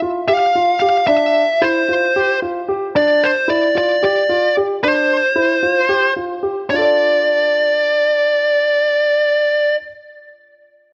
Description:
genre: progressive instrumental, progressive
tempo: 224 BPM (eighths)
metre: 7/8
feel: straight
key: D minor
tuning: A4 = 443 Hz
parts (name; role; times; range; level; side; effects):
- warm concert grand piano; arpeggios; 0.0-9.9 s; D4 to D5; -22 LUFS; equal; none
- fuzz lead guitar; melody; 0.3-9.8 s; C5 to F5; -16 LUFS; equal; distortion, slapback echo
room: light reverb, small room ambience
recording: worn, warbling old tape, cassette tape, warbly pitch drift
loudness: -15 LUFS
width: mono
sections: 0.0-6.7 A section; 6.7-10.4 B section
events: none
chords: 0.0 Dm11; 6.7 Dm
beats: 0.02 0.29 0.55 0.82 | 1.09 1.36 1.62 1.89 2.16 2.42 2.69 | 2.96 3.23 3.49 3.76 4.03 4.30 4.56 | 4.83 5.10 5.37 5.63 5.90 6.17 6.43 | 6.70 6.97 7.24 7.50 7.77 8.04 8.31 | 8.57 8.84 9.11 9.38 9.64

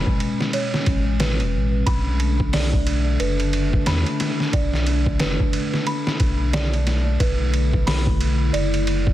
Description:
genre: trip hop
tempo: 90 BPM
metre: 4/4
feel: swing 60% on 16ths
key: B dorian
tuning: A4 = 439 Hz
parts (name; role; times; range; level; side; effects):
- warbly tape-like pad; sustained chords; 0.0-9.1 s; B2 to E4; -25 LUFS; left 1 dB; chorus, built-in reverb
- small celesta; arpeggios; 0.0-9.1 s; B4 to B5; -30 LUFS; right 4 dB; digital delay
- warm sub bass; bass; 0.0-9.1 s; E1 to E2; -21 LUFS; equal; tube saturation
- trip hop sampler-style drum kit; drums; 0.1-9.1 s; hi-hat, kick drum, ride cymbal, snare drum; -23 LUFS; equal; overdrive, studio ambience
room: digital ambience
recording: dense, heavily limited modern master, vinyl crackle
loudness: -18 LUFS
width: side -13 dB against mid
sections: 0.0-9.1 A section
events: none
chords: 0.0 Amaj9; 1.9 Bm7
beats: 0.53 1.20 | 1.86 2.53 3.20 3.87 | 4.53 5.20 5.87 6.53 | 7.20 7.87 8.53

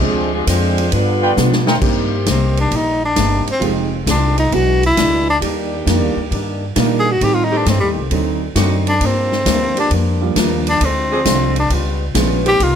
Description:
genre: jazz, big band swing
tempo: 134 BPM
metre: 4/4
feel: swing 68% on 8ths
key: C minor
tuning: A4 = 444 Hz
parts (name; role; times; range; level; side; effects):
- clear saxophone section; melody; 0.0-1.7 s; F3 to C5; -20 LUFS; left 1 dB; none
- clear trombone section; second line; 0.0-1.7 s; C3 to C4; -24 LUFS; right 2 dB; none
- picked swing-style acoustic guitar; accompaniment; 0.0-12.8 s; F2 to F#4; -24 LUFS; left 5 dB; none
- warm concert grand piano; accompaniment; 0.0-12.4 s; D3 to Ab4; -22 LUFS; right 9 dB; none
- upright bass; bass; 0.0-12.8 s; F1 to B2; -19 LUFS; equal; none
- swinging big-band drum kit; drums; 0.5-12.7 s; crash cymbal, hi-hat, kick drum, ride cymbal, snare drum; -21 LUFS; left 1 dB; none
- warm trumpet section; stabs; 1.2-1.8 s; Eb4 to G5; -21 LUFS; right 1 dB; none
- mellow saxophone section; sustained chords; 1.8-12.8 s; Eb3 to Ab4; -24 LUFS; equal; none
- clear tenor saxophone; melody; 2.3-12.8 s; G3 to Ab4; -16 LUFS; left 1 dB; none
room: light reverb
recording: close, detailed microphones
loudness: -14 LUFS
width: side -8 dB against mid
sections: 0.0-1.8 A section; 1.8-12.8 B section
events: drum fill 1.4-1.8; tenor saxophone solo 1.8-12.8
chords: 0.0 Dm7b5; 0.9 G7; 1.8 Cm7; 3.6 Fm7; 4.5 E9; 5.4 Ebmaj7; 7.2 Am7b5; 8.1 D7b9; 9.0 Gm7; 10.8 Dm7b5; 11.7 Db7#11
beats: | 0.02 0.47 0.92 1.37 | 1.82 2.27 2.72 3.17 | 3.62 4.06 4.51 4.96 | 5.41 5.86 6.31 6.76 | 7.21 7.66 8.11 8.56 | 9.01 9.46 9.91 10.36 | 10.80 11.25 11.70 12.15 | 12.60

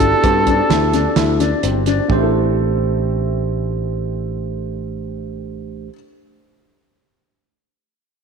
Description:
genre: progressive instrumental, band music in an uneven meter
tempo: 129 BPM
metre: 5/4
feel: straight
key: A dorian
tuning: A4 = 440 Hz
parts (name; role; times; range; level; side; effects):
- mellow trumpet; melody; 0.0-1.6 s; A4; -18 LUFS; right 1 dB; none
- barky tine electric piano; accompaniment; 0.0-5.9 s; A3 to C5; -24 LUFS; right 12 dB; none
- dark baby grand piano; arpeggios; 0.0-5.9 s; A3 to A4; -21 LUFS; left 8 dB; slapback echo
- picked electric bass; bass; 0.0-5.9 s; G1 to G2; -20 LUFS; equal; none
- cloth-damped thuddy drum kit; drums; 0.0-2.2 s; hi-hat, kick drum, snare drum; -21 LUFS; right 3 dB; none
room: moderate echo chamber reverb, RT60 2.0 s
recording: 1960s-style stereo with parts hard left and right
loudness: -15 LUFS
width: side -6 dB against mid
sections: 0.0-2.1 A section; 2.1-4.4 B section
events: none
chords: 0.0 Gadd9; 2.1 Am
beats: 0.24 0.70 1.17 1.63 | 2.10 2.56 3.03 3.49 3.96

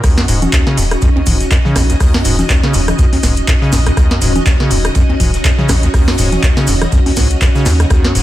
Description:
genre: acid house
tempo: 122 BPM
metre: 4/4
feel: swing 57% on 16ths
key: Eb minor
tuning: A4 = 440 Hz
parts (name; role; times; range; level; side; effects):
- string machine, full ensemble; sustained chords; 0.0-8.2 s; Db4 to Ab5; -19 LUFS; equal; ensemble chorus, sidechain pumping
- acid bass, square; riff; 0.0-8.2 s; Eb2 to Db3; -17 LUFS; equal; overdrive, sidechain pumping
- booming analog drum machine; drums; 0.0-8.2 s; congas, crash cymbal, handclaps, hi-hat, rim click, snare drum, toms; -18 LUFS; equal; none
- damped 70s drum kit; drums; 0.0-8.2 s; hi-hat, ride cymbal, snare drum; -32 LUFS; right 2 dB; none
- electronic kick drum; drums; 0.0-8.0 s; none; -13 LUFS; equal; none
- maracas; percussion; 0.0-8.2 s; none; -27 LUFS; right 4 dB; none
- round analog bass; bass; 0.3-8.2 s; Eb1 to Eb2; -15 LUFS; equal; sidechain pumping
room: small room ambience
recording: none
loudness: -10 LUFS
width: side -14 dB against mid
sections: 0.0-8.2 A section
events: drop 0.0-8.2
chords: 0.0 Ebm7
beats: | 0.04 0.53 1.02 1.51 | 2.00 2.50 2.99 3.48 | 3.97 4.46 4.95 5.45 | 5.94 6.43 6.92 7.41 | 7.91

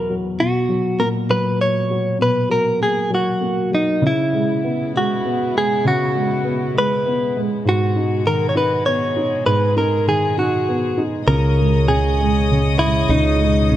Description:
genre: pop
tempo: 66 BPM (dotted quarters)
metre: 6/8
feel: straight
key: unclear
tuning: A4 = 439 Hz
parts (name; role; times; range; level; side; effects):
- direct-recorded clean electric guitar; melody; 0.0-13.8 s; D#4 to C#5; -19 LUFS; equal; none
- dark upright piano; accompaniment; 0.0-13.8 s; E2 to D#4; -20 LUFS; equal; none
- warm studio string section; sustained chords; 4.0-13.8 s; B2 to D#6; -29 LUFS; left 4 dB; none
- fingered electric bass; bass; 11.3-13.8 s; C#2; -17 LUFS; equal; none
room: light reverb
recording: none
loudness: -16 LUFS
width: side -12 dB against mid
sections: 0.0-11.3 A section; 11.3-13.8 B section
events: none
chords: 0.4 B5; 4.0 C#m7; 7.6 G#m7; 11.3 C#sus2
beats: | 0.39 1.30 | 2.20 3.12 | 4.03 4.94 | 5.85 6.75 | 7.65 8.55 | 9.46 10.37 | 11.28 12.18 | 13.09

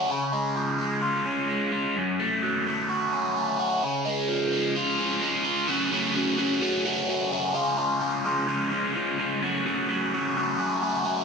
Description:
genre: rock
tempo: 128 BPM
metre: 4/4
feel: straight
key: F# harmonic minor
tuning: A4 = 440 Hz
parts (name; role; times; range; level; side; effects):
- overdriven electric guitar; solo; 0.0-11.2 s; F#2 to F#4; -24 LUFS; equal; phaser
room: wet studio reverb, RT60 0.8 s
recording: band playing live in one room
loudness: -24 LUFS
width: side -5 dB against mid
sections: 0.0-5.7 A section; 5.7-11.2 B section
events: none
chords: 0.1 C#; 2.0 F#m; 3.8 C#; 5.7 F#m; 7.6 C#; 9.4 F#m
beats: | 0.09 0.56 1.02 1.49 | 1.95 2.42 2.89 3.35 | 3.82 4.29 4.75 5.22 | 5.68 6.15 6.62 7.08 | 7.55 8.02 8.49 8.95 | 9.42 9.89 10.36 10.82

